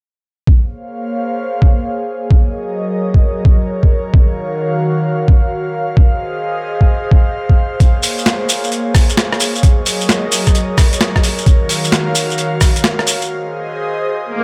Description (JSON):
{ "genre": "UK garage, two-step garage", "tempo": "131 BPM", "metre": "4/4", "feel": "swing 66% on 16ths", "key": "Bb minor", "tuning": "A4 = 441 Hz", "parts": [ { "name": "airy breathy pad", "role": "sustained chords", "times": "0.8-14.4 s", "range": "Eb3 to F5", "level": "-21 LUFS", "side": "equal", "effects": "chorus, sidechain pumping" }, { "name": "electronic kick drum", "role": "drums", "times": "0.5-12.7 s", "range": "none", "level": "-12 LUFS", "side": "equal", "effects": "overdrive" }, { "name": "boom bap sampler-style drum kit", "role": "drums", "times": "7.8-13.3 s", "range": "hi-hat, rim click, snare drum", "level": "-19 LUFS", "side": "equal", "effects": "overdrive" }, { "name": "shekere", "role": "percussion", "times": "7.8-13.3 s", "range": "none", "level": "-22 LUFS", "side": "equal", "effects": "none" }, { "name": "swell", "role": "sound effects", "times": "14.3-14.4 s", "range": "none", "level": "-20 LUFS", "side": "equal", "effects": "none" } ], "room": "light reverb", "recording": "none", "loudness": "-15 LUFS", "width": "mono", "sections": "0.5-14.4 A section", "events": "filter sweep on analog synth pad 0.5-14.4; break 13.3-14.4; swell 14.3", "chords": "0.5 Bbm9; 2.3 Gb6; 4.1 Ebm7; 6.0 Fm7; 7.8 Bbm9; 9.6 Gb6; 11.5 Ebm7; 13.3 Fm7" }